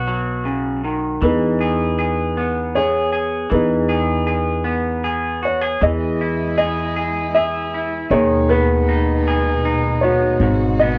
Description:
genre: acoustic folk-pop ballad.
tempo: 78 BPM.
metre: 3/4.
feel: straight.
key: unclear.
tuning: A4 = 436 Hz.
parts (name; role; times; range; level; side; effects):
dark baby grand piano; melody; 0.0-11.0 s; D#4 to E5; -22 LUFS; equal; none.
electric guitar through a small old amp; accompaniment; 0.0-11.0 s; G#2 to G#4; -24 LUFS; equal; none.
upright bass; bass; 0.0-11.0 s; G#1 to E2; -24 LUFS; equal; none.
warm studio string section; sustained chords; 5.8-11.0 s; B2 to F#4; -30 LUFS; equal; none.
room: moderate small room reverb, RT60 0.5 s.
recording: worn, warbling old tape, cassette tape, warbly pitch drift.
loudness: -19 LUFS.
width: mono.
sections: 0.0-5.8 A section; 5.8-11.0 B section.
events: none.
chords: 0.0 Bsus2; 1.2 Emaj7; 8.1 B6/D#; 10.4 G#m7.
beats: 0.46 | 1.22 1.99 2.75 | 3.52 4.28 5.05 | 5.82 6.58 7.35 | 8.11 8.88 9.64 | 10.40.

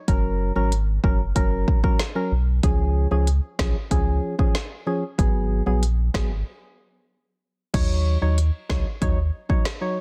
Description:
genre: dancehall.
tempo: 94 BPM.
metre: 4/4.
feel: straight.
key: unclear.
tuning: A4 = 438 Hz.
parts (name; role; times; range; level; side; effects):
percussive organ stab; accompaniment; 0.1-10.0 s; E#3 to C#5; -29 LUFS; equal; chorus.
warm sub bass; bass; 0.1-9.3 s; F#1 to D#2; -24 LUFS; equal; none.
afro-pop drum kit; drums; 0.1-9.8 s; crash cymbal, hi-hat, kick drum, snare drum; -25 LUFS; equal; vintage 12-bit sampler grit.
room: little or no reverb.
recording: dense, heavily limited modern master.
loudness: -22 LUFS.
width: mono.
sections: 0.0-7.7 A section; 7.7-10.0 B section.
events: break 6.5-7.7.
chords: 0.1 F#; 2.6 C#; 5.2 G#m7; 7.7 D#m7.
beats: | 0.08 0.72 1.36 2.00 | 2.63 3.27 3.91 4.55 | 5.19 5.83 6.46 7.10 | 7.74 8.38 9.02 9.65.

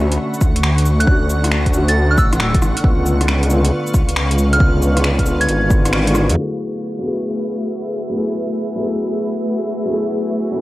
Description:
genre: future garage.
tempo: 136 BPM.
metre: 4/4.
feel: swing 66% on 16ths.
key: F# minor.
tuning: A4 = 441 Hz.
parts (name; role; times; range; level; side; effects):
felt-muted upright piano; accompaniment; 0.0-10.6 s; D3 to G#4; -22 LUFS; left 1 dB; sidechain pumping, analog delay.
granular cloud pad; sustained chords; 0.0-10.6 s; A3 to C#6; -23 LUFS; equal; built-in reverb, sidechain pumping.
swelling detuned saw bass; bass; 0.0-6.4 s; D1 to E#2; -16 LUFS; equal; tube saturation, sidechain pumping.
deep house drum kit; drums; 0.1-6.4 s; cabasa, finger snaps, hi-hat, rim click; -23 LUFS; equal; overdrive, low-pass filter on cymbals, low-pass filter on snare, low-pass filter on hats, low-pass filter on perc, low-pass filter on room.
electronic kick drum; drums; 0.4-5.8 s; none; -15 LUFS; equal; overdrive.
soft synth bell; melody; 1.0-5.6 s; E6 to A6; -22 LUFS; right 2 dB; chorus, analog delay.
room: light reverb.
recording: dry, gritty hardware recording, vinyl crackle, low-pass filter.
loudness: -14 LUFS.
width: side -17 dB against mid.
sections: 0.0-6.4 A section; 6.4-10.6 B section.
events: kick drops out 5.9-6.4; band accent 5.9; filter sweep 6.4-10.6.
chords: 0.0 Dmaj7; 2.8 C#7b9; 6.4 F#m11.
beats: 0.19 0.63 | 1.07 1.51 1.96 2.40 | 2.84 3.28 3.72 4.16 | 4.60 5.04 5.49 5.93 | 6.37 6.81 7.25 7.69 | 8.13 8.57 9.02 9.46 | 9.90 10.34.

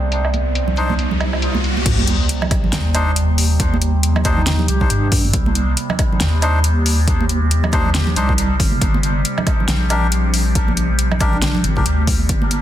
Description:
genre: deep dubstep.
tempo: 138 BPM.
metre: 4/4.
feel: swing 58% on 16ths, half-time.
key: C minor.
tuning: A4 = 442 Hz.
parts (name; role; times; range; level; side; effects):
overtone-sweeping drone; sustained chords; 0.0-12.6 s; C3 to G3; -25 LUFS; right 2 dB; chorus, built-in reverb.
deep soft wobble bass; bass; 0.0-12.6 s; G1 to G2; -17 LUFS; equal; chorus.
riser and sub drop; sound effects; 0.0-3.6 s; none; -24 LUFS; equal; none.
deep house drum kit; drums; 0.1-12.6 s; crash cymbal, hi-hat, snare drum, woodblock; -22 LUFS; equal; overdrive, low-pass filter on hats, low-pass filter on perc, low-pass filter on cymbals, low-pass filter on snare.
congas; percussion; 0.3-12.5 s; none; -26 LUFS; right 5 dB; dub echo.
melodica; stabs; 0.8-11.8 s; D4 to C5; -25 LUFS; left 2 dB; dub echo.
electronic kick drum; drums; 1.9-12.4 s; none; -19 LUFS; equal; overdrive.
warm duduk; melody; 4.4-5.1, 11.3-11.6 s; D4 to G4; -29 LUFS; left 2 dB; dub echo.
room: digital ambience.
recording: dense, heavily limited modern master.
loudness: -14 LUFS.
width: side -12 dB against mid.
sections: 0.0-1.9 A section; 1.9-12.6 B section.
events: riser 0.0-1.9; drop 1.9-12.6; impact 1.9-3.6.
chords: 0.0 C5; 1.9 Cmadd9; 8.8 Gm.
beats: | 0.12 0.55 0.99 1.42 | 1.86 2.29 2.73 3.16 | 3.60 4.03 4.47 4.90 | 5.34 5.77 6.21 6.64 | 7.08 7.51 7.95 8.38 | 8.81 9.25 9.68 10.12 | 10.55 10.99 11.42 11.86 | 12.29.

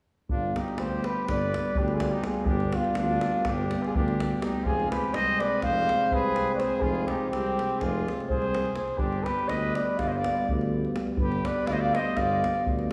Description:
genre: balkan folk, Balkan brass band.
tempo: 248 BPM (eighths).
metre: 9/8.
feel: straight.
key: G phrygian dominant.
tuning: A4 = 440 Hz.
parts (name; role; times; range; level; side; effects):
warm flugelhorn; melody; 0.3-12.7 s; F4 to F5; -31 LUFS; equal; none.
bright trumpet; second line; 0.3-12.7 s; C4 to D5; -39 LUFS; equal; none.
dark euphonium; accompaniment; 0.3-12.9 s; B3 to C4; -36 LUFS; equal; none.
dark euphonium; accompaniment; 0.3-12.9 s; G3 to Ab3; -37 LUFS; equal; none.
mellow tuba; bass; 0.3-12.9 s; F1 to D2; -34 LUFS; equal; none.
davul; percussion; 0.3-12.9 s; none; -36 LUFS; equal; none.
room: wet church reverb, RT60 2.6 s.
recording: recorded in a church or concert hall, studio ambience.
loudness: -27 LUFS.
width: mono.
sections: 0.3-12.9 A section.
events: none.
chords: 0.3 G; 4.6 Fm; 9.0 G.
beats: | 0.29 0.54 0.78 1.02 1.26 1.50 1.74 1.98 2.22 | 2.46 2.71 2.95 3.19 3.43 3.67 3.92 4.16 4.40 | 4.64 4.88 5.12 5.37 5.61 5.85 6.09 6.33 6.58 | 6.82 7.06 7.30 7.54 7.79 8.03 8.27 8.51 8.75 | 8.99 9.24 9.48 9.72 9.96 10.20 10.45 10.69 10.93 | 11.17 11.41 11.65 11.89 12.13 12.38 12.62 12.86.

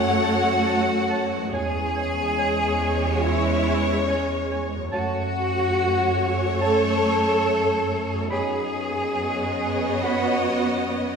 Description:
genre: cinematic.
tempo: 70 BPM.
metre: 4/4.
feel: rubato.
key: unclear.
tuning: A4 = 439 Hz.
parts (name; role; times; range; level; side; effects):
rich studio violin section; melody; 0.0-11.2 s; C#5 to F#5; -30 LUFS; left 4 dB; none.
hollow large flute ensemble; second line; 0.0-11.2 s; B4 to A5; -29 LUFS; left 2 dB; none.
warm studio violin section; second line; 0.0-11.2 s; C#5; -32 LUFS; left 2 dB; none.
rich studio viola section; accompaniment; 0.0-11.2 s; G#3 to B3; -29 LUFS; right 2 dB; none.
dark French horn section; sustained chords; 0.0-11.2 s; G#3 to C#4; -31 LUFS; left 4 dB; none.
concert harp; arpeggios; 0.0-11.2 s; E2 to C#5; -40 LUFS; left 4 dB; none.
clear studio cello section; bass; 0.0-11.2 s; B3 to A4; -25 LUFS; right 1 dB; none.
rich studio double bass section; bass; 0.0-11.2 s; E2 to F#2; -29 LUFS; right 3 dB; none.
warm oboe; second line; 0.2-10.4 s; G#5 to B5; -35 LUFS; right 2 dB; none.
dark clarinet; second line; 0.3-10.4 s; C#5; -33 LUFS; right 3 dB; none.
room: wet scoring stage reverb, RT60 1.6 s.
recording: minimal, uncompressed stereo recording.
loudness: -20 LUFS.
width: side -6 dB against mid.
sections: 0.0-11.2 A section.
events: none.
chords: 0.0 F#m; 8.3 Badd9/F#.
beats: 0.67 | 1.53 2.39 3.23 4.08 | 4.92 5.76 6.61 7.46 | 8.31 9.17 10.04 10.90.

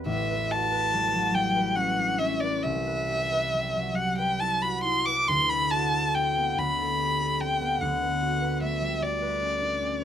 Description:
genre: classical, impressionist duo for violin and harp.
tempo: 46 BPM (dotted quarters).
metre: 6/8.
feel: uneven beats, rubato.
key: unclear.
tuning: A4 = 437 Hz.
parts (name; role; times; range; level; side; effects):
concert harp; accompaniment; 0.0-10.0 s; A1 to B4; -29 LUFS; equal; none.
rich violin; melody; 0.1-10.0 s; D5 to D6; -25 LUFS; equal; none.
room: light reverb.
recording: close, detailed microphones.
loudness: -24 LUFS.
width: side -9 dB against mid.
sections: 0.0-10.0 A section.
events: none.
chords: 0.1 A13; 2.6 Cmaj7; 5.3 D9; 6.6 Am7/D; 7.8 Bm9/D.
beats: | 0.07 1.35 | 2.63 3.96 | 5.28 6.58 | 7.81 9.02.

